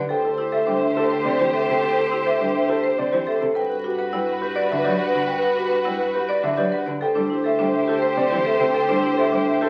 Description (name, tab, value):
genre	classical, minimalist pattern music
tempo	104 BPM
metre	3/4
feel	straight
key	unclear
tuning	A4 = 440 Hz
part	dark baby grand piano	melody	0.0-9.7 s	G4 to G5	-27 LUFS	equal	none
part	warm cello	accompaniment	0.0-9.4 s	C3 to G3	-34 LUFS	equal	none
part	marimba with medium hard mallets	arpeggios	0.0-9.7 s	C4 to D5	-26 LUFS	equal	none
part	mellow wooden-headed alto flute	second line	0.1-9.6 s	B4 to C5	-29 LUFS	equal	none
part	rich studio string section	sustained chords	0.1-9.7 s	F#4 to C5	-28 LUFS	equal	none
part	warm double bass	bass	0.1-9.7 s	D2 to G2	-38 LUFS	equal	none
room	moderate large studio reverb, RT60 1.0 s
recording	very old 78 rpm record, vinyl crackle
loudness	-21 LUFS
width	mono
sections	0.0-9.7 A section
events	none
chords	0.1 D7sus4; 3.6 Gmaj7; 7.0 D7sus4